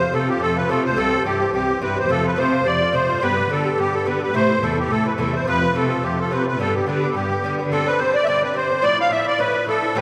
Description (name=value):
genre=celtic folk, Celtic reel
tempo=214 BPM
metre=4/4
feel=swing 56% on 8ths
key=G mixolydian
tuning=A4 = 439 Hz
part: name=musette accordion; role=melody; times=0.0-10.0 s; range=G4 to F5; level=-22 LUFS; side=equal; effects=none
part: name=Irish bouzouki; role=accompaniment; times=0.0-10.0 s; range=G2 to G4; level=-26 LUFS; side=equal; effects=none
part: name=rich cello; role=bass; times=0.0-7.7 s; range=C2 to D3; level=-27 LUFS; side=equal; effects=none
room=wet concert hall reverb, RT60 1.9 s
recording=recorded in a church or concert hall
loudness=-20 LUFS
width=mono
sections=0.0-7.7 A section; 7.7-10.0 B section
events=none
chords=0.0 F; 1.0 C; 2.1 F; 3.2 G; 4.3 Am; 5.5 F; 6.6 G; 7.7 Gsus4; 8.8 Dmadd9